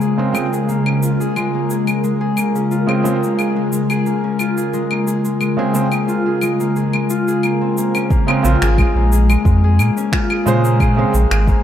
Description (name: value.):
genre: organic downtempo.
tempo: 89 BPM.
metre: 4/4.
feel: straight.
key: Bb minor.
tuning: A4 = 440 Hz.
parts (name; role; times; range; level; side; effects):
ethereal airy pad; sustained chords; 0.0-8.1 s; Db3 to Bb4; -22 LUFS; right 1 dB; ensemble chorus, built-in reverb, sidechain pumping, shimmer reverb.
concert harp; arpeggios; 0.0-11.6 s; Ab3 to Ab4; -18 LUFS; left 3 dB; low-pass filter, tape echo, shimmer reverb.
electronic cabasa, claves and finger snaps; drums; 0.0-11.6 s; none; -24 LUFS; left 1 dB; none.
felt-muted upright piano; accompaniment; 0.2-11.1 s; Db3 to C5; -23 LUFS; right 4 dB; sidechain pumping, tape echo, shimmer reverb.
electronic kick drum; drums; 8.1-11.6 s; none; -16 LUFS; equal; none.
warm sub bass; bass; 8.4-11.5 s; Ab1 to Bb2; -14 LUFS; equal; none.
room: moderate plate reverb, RT60 1.6 s, digital ambience.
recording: dreamy mix soaked in reverb.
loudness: -14 LUFS.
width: side -10 dB against mid.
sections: 0.0-8.1 A section; 8.1-11.6 B section.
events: none.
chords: 0.0 Bbm7.